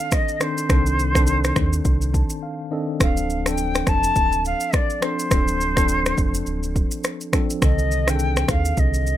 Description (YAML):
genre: afrobeats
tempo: 104 BPM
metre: 4/4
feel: swing 58% on 16ths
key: C dorian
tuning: A4 = 440 Hz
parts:
  - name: jazz flute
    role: melody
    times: 0.0-9.2 s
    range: C5 to A5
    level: -24 LUFS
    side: left 1 dB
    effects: none
  - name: mellow tine electric piano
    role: accompaniment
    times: 0.0-9.2 s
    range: D3 to A5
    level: -26 LUFS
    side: left 1 dB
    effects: medium stereo tremolo
  - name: deep house drum kit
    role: drums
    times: 0.1-9.2 s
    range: finger snaps, kick drum, rim click, shaker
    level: -21 LUFS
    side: equal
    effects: none
  - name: sub bass with octave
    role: bass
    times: 0.7-9.2 s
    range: D1 to Eb2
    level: -23 LUFS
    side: right 1 dB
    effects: none
room: light reverb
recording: rough home demo mix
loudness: -18 LUFS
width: side -12 dB against mid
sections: 0.0-9.2 A section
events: tine electric piano fill 1.9-3.0; break 2.4-3.0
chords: 0.0 Cm69; 3.0 Dm7; 7.6 Cm69